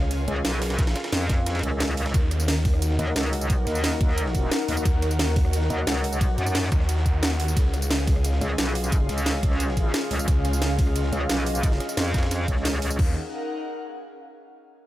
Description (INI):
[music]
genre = dark technical drum and bass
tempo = 177 BPM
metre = 4/4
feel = straight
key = Eb minor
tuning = A4 = 441 Hz
[part]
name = dark analog pad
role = sustained chords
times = 0.0-13.1 s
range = Db4 to Gb5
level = -34 LUFS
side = equal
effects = chorus, sidechain pumping
[part]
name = snarling distorted saw bass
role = bass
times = 0.0-13.1 s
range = Db2 to Eb2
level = -24 LUFS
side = equal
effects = distortion, overdrive
[part]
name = drum and bass drum kit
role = drums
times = 0.0-13.1 s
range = crash cymbal, hi-hat, rim click, snare drum, tambourine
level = -28 LUFS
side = right 1 dB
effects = overdrive
[part]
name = airy breathy pad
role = texture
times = 0.0-14.3 s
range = Db4 to Gb5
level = -32 LUFS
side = left 1 dB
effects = chorus, sidechain pumping
[part]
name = breakbeat sampler-style drum kit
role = drums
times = 0.1-12.9 s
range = hi-hat, ride cymbal, snare drum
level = -37 LUFS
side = right 1 dB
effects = high-pass filter on snare, high-pass filter on cymbals, high-pass filter on hats
[part]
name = metallic wobble bass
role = bass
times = 0.3-13.0 s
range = Cb2 to Gb2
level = -26 LUFS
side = equal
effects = chorus
[part]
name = electronic kick drum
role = drums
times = 0.8-13.1 s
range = none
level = -22 LUFS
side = equal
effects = overdrive
[sound]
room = digital ambience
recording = none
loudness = -21 LUFS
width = side -15 dB against mid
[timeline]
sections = 0.0-13.0 A section; 13.0-14.3 B section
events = drop 0.0-13.0; kick drops out 1.5-2.1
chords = 0.0 Db; 2.1 Ebm; 7.6 Db; 13.0 Ebm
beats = 0.11 0.45 | 0.79 1.12 1.46 1.80 | 2.14 2.48 2.82 3.16 | 3.50 3.84 4.18 4.51 | 4.85 5.19 5.53 5.87 | 6.21 6.55 6.89 7.23 | 7.57 7.91 8.24 8.58 | 8.92 9.26 9.60 9.94 | 10.28 10.62 10.96 11.29 | 11.63 11.97 12.31 12.65 | 12.99 13.33 13.67 14.01